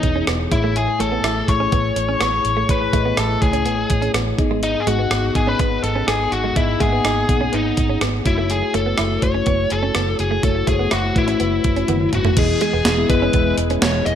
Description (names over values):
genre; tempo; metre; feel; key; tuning
1980s-style pop; 124 BPM; 4/4; straight; E major; A4 = 440 Hz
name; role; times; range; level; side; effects
biting lead guitar; melody; 0.0-14.2 s; D#4 to D#5; -21 LUFS; left 2 dB; overdrive, ping-pong delay
mellow tine electric piano; accompaniment; 0.0-14.2 s; G#2 to G#5; -23 LUFS; left 4 dB; phaser
direct-recorded clean electric guitar; riff; 0.0-14.0 s; G#3 to E4; -27 LUFS; right 6 dB; wide subtle chorus
vintage muted fingered electric bass; bass; 0.0-14.2 s; E1 to C#2; -24 LUFS; right 1 dB; none
clean 12-bit digital drum machine; drums; 0.0-14.2 s; crash cymbal, hi-hat, kick drum, rim click, snare drum, tambourine, toms; -21 LUFS; right 1 dB; gated reverb
phased analog pad; sustained chords; 12.9-14.2 s; E3 to E4; -28 LUFS; right 4 dB; phaser, chorus
room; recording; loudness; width
moderate plate reverb, RT60 1.5 s, digital ambience; bright 1980s-style digital production; -16 LUFS; side -9 dB against mid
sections
0.0-12.4 A section; 12.4-14.2 B section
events
drum fill 11.9-12.4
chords
0.0 Emaj7; 0.5 Amaj7; 4.4 G#m; 8.3 F#m7; 12.4 Emaj7